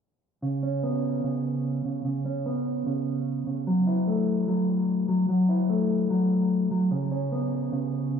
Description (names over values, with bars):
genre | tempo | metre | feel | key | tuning
hip hop | 148 BPM | 4/4 | half-time | unclear | A4 = 440 Hz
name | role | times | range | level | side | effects
mellow electric guitar | arpeggios | 0.4-8.2 s | C#3 to E4 | -24 LUFS | equal | spring reverb, digital delay
room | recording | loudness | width
wet recital hall reverb, RT60 1.4 s, digital ambience | dark, warm production, low-pass filter | -24 LUFS | side -7 dB against mid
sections
0.4-8.2 A section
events
none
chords
0.4 Bsus2/C#; 3.7 F#m7; 6.9 Bsus2/C#